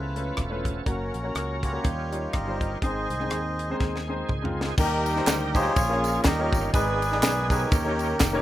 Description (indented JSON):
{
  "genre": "uptempo gospel",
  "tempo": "123 BPM",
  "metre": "4/4",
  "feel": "swing 57% on 8ths",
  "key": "Eb major from 4.8 s",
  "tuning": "A4 = 439 Hz",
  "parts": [
    { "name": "melodica", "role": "melody", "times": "0.0-8.4 s", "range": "Db4 to Eb5", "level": "-28 LUFS", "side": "equal", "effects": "none" },
    { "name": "warm baby grand piano", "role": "accompaniment", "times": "0.0-8.4 s", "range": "Ab2 to D5", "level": "-30 LUFS", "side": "left 1 dB", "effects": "none" },
    { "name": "overdriven tonewheel organ", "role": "sustained chords", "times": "0.0-8.4 s", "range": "Eb3 to Bb4", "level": "-34 LUFS", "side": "right 1 dB", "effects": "slow rotary speaker, chorus vibrato" },
    { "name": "fingered electric bass", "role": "bass", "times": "0.0-8.4 s", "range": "E1 to Eb2", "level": "-31 LUFS", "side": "equal", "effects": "none" },
    { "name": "tight funk drum kit", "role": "drums", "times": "0.2-8.3 s", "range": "crash cymbal, hi-hat, kick drum, ride cymbal, rim click, snare drum, toms", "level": "-26 LUFS", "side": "equal", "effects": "none" },
    { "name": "tambourine and handclaps", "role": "percussion", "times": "4.8-8.3 s", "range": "none", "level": "-34 LUFS", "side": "right 4 dB", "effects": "none" }
  ],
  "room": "little or no reverb",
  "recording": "rough home demo mix",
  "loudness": "-23 LUFS",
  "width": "side -13 dB against mid",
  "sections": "0.0-4.8 A section; 4.8-8.4 B section",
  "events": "drum fill 3.8-4.8",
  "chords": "0.0 Db7alt; 0.9 Gb; 1.8 Eb9; 2.8 Ab; 4.8 Eb; 5.8 Bbm7; 6.2 Eb9; 6.7 Abm; 7.7 Eb7"
}